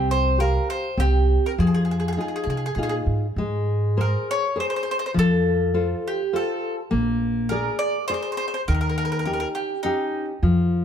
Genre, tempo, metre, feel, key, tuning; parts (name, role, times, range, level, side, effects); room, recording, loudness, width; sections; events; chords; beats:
italian folk, Italian serenade; 102 BPM; 3/4; straight; F minor, Ab major from 3.4 s; A4 = 440 Hz
mandolin; melody; 0.0-10.2 s; Eb4 to D5; -25 LUFS; right 1 dB
nylon-string guitar; accompaniment; 0.0-10.8 s; Eb3 to F5; -24 LUFS; left 2 dB
upright bass; bass; 0.0-10.8 s; Bb1 to C3; -23 LUFS; right 1 dB
light reverb; close, detailed microphones; -20 LUFS; side -8 dB against mid
0.0-3.4 A section; 3.4-10.8 B section
0.0 Csus4; 1.0 C5; 1.6 Fm7; 3.4 Abadd9; 5.2 F; 6.9 Bb7; 8.7 Eb7
0.39 0.98 | 1.57 2.17 2.77 | 3.37 3.96 4.56 | 5.15 5.74 6.33 | 6.91 7.50 8.08 | 8.66 9.24 9.84 | 10.43